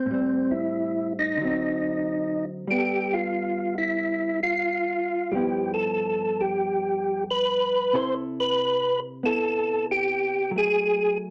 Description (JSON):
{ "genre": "jazz", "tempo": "92 BPM", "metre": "4/4", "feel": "swing 66% on 8ths", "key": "G mixolydian", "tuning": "A4 = 440 Hz", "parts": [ { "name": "percussive tonewheel organ", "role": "melody", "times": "0.0-11.2 s", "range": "C4 to C5", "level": "-26 LUFS", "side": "equal", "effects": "overdrive, chorus vibrato, fast rotary speaker" }, { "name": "hollow-body jazz guitar", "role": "accompaniment", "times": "0.0-11.3 s", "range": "G2 to A4", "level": "-34 LUFS", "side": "equal", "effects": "none" } ], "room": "wet small room reverb, RT60 0.5 s", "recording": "none", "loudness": "-25 LUFS", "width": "mono", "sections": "0.0-2.7 A section; 2.7-11.3 B section", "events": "none", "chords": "0.1 Am7; 1.4 D7b9; 2.7 G9; 5.3 G13; 7.9 C6; 10.5 F#madd9", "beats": "| 0.09 0.74 1.40 2.05 | 2.71 3.36 4.01 4.67 | 5.32 5.97 6.63 7.28 | 7.93 8.59 9.24 9.89 | 10.55 11.20" }